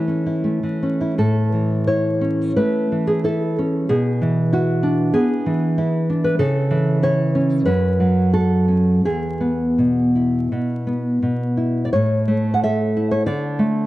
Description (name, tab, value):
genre	romantic piece for solo classical guitar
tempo	80-97 BPM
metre	4/4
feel	rubato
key	A major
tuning	A4 = 435 Hz
part	nylon-string guitar	solo	0.0-13.9 s	E2 to F#5	-17 LUFS	equal	none
room	light reverb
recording	vinyl crackle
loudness	-17 LUFS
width	side -16 dB against mid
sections	0.0-1.2 A section; 1.2-13.9 A section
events	none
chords	0.0 A; 3.9 E7/B; 6.4 A/C#; 7.7 F#m; 9.0 E; 11.9 A; 13.3 D5